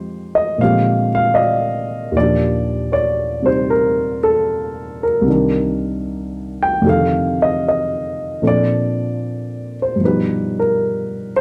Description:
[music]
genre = jazz ballad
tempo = 77 BPM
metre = 4/4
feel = swing 68% on 8ths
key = Bb major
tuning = A4 = 440 Hz
[part]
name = dark baby grand piano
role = solo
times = 0.0-11.4 s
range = C2 to G5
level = -18 LUFS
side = equal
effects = none
[sound]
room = moderate large studio reverb, RT60 1.3 s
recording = dark, warm production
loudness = -18 LUFS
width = mono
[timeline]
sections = 0.0-11.4 A section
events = none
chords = 0.0 Fm9; 0.6 Bb13; 2.2 Ebmaj9; 5.3 Cm7; 6.8 F13; 8.4 Bbmaj9; 10.0 G7alt

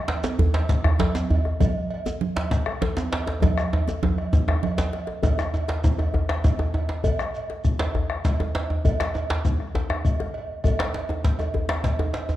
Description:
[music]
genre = west african traditional, West African drum ensemble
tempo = 133 BPM (dotted quarters)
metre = 12/8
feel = straight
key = none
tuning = none
[part]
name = cowbell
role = percussion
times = 0.1-12.3 s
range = none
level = -33 LUFS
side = right 3 dB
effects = none
[part]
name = djembe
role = percussion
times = 0.1-12.4 s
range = none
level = -25 LUFS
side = right 1 dB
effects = none
[part]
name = congas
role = percussion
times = 0.2-4.9 s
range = none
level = -29 LUFS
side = right 5 dB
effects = none
[part]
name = djembe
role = percussion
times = 0.2-12.4 s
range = none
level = -31 LUFS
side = left 3 dB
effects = none
[part]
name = shekere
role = percussion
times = 0.2-12.4 s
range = none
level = -34 LUFS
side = right 1 dB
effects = none
[part]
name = bombo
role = percussion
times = 0.7-12.0 s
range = none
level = -25 LUFS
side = left 2 dB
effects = none
[sound]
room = moderate recital hall reverb, RT60 1.7 s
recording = dark, warm production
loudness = -21 LUFS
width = side -14 dB against mid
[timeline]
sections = 0.0-5.2 A section; 5.2-12.4 A section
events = drum fill 3.4-5.2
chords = none

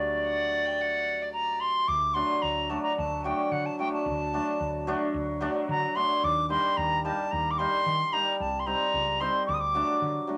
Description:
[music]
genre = klezmer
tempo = 111 BPM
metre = 4/4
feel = straight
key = D phrygian dominant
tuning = A4 = 441 Hz
[part]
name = bright silver concert flute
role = melody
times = 0.0-10.3 s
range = D5 to Eb6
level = -29 LUFS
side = equal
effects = none
[part]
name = hammered dulcimer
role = accompaniment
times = 0.0-10.4 s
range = F#3 to Eb4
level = -33 LUFS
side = equal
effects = none
[part]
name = woody fretless electric bass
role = bass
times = 0.0-10.2 s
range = C2 to Eb3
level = -39 LUFS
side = equal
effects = none
[part]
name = warm violin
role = second line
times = 0.3-1.8 s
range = D5 to G5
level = -38 LUFS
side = equal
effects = none
[sound]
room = moderate studio reverb, RT60 0.6 s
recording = none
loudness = -28 LUFS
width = mono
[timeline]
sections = 0.0-1.9 A section; 1.9-10.4 B section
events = none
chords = 0.0 D; 6.2 Eb; 8.4 Cm; 9.5 D

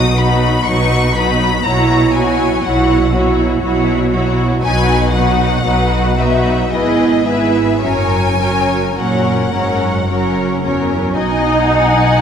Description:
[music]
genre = classical, slow romantic movement for string orchestra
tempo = 52-62 BPM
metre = 3/4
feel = rubato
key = B major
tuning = A4 = 439 Hz
[part]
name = rich symphonic violin section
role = melody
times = 0.0-12.2 s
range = D#5 to D#6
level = -19 LUFS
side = left 5 dB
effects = none
[part]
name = rich symphonic violin section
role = second line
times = 0.0-12.2 s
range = F#4 to G#5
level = -19 LUFS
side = left 2 dB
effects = none
[part]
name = rich symphonic viola section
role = accompaniment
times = 0.0-12.2 s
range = F#3 to E4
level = -16 LUFS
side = right 2 dB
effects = none
[part]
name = rich symphonic cello section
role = bass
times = 0.0-12.2 s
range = E2 to B2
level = -19 LUFS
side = right 2 dB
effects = none
[part]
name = rich symphonic double bass section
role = bass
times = 0.0-12.2 s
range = F#1 to B1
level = -20 LUFS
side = right 1 dB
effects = none
[sound]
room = moderate scoring stage reverb, RT60 1.7 s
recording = none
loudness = -12 LUFS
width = side -8 dB against mid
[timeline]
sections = 0.0-11.2 A section; 11.2-12.2 A section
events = none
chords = 0.0 B; 1.7 F#5/B; 4.6 B; 6.7 E/G#; 7.8 F#; 11.2 B

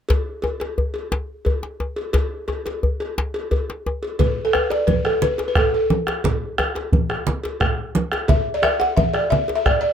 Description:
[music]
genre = west african traditional, West African drum ensemble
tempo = 117 BPM (dotted quarters)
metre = 12/8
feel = straight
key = D major pentatonic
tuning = A4 = 440 Hz
[part]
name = cowbell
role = percussion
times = 0.1-9.8 s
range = none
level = -29 LUFS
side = left 2 dB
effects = none
[part]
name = djembe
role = percussion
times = 0.1-9.8 s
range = none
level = -23 LUFS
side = left 1 dB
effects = none
[part]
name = balafon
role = melody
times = 4.2-9.9 s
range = A4 to F#5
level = -20 LUFS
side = left 1 dB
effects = none
[part]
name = bombo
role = percussion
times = 4.2-9.8 s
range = none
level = -22 LUFS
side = right 1 dB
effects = none
[part]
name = congas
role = percussion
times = 4.2-9.5 s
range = none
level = -22 LUFS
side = right 4 dB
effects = none
[sound]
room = little or no reverb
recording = none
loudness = -19 LUFS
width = side -8 dB against mid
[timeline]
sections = 0.1-4.2 A section; 4.2-9.9 B section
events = none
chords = none

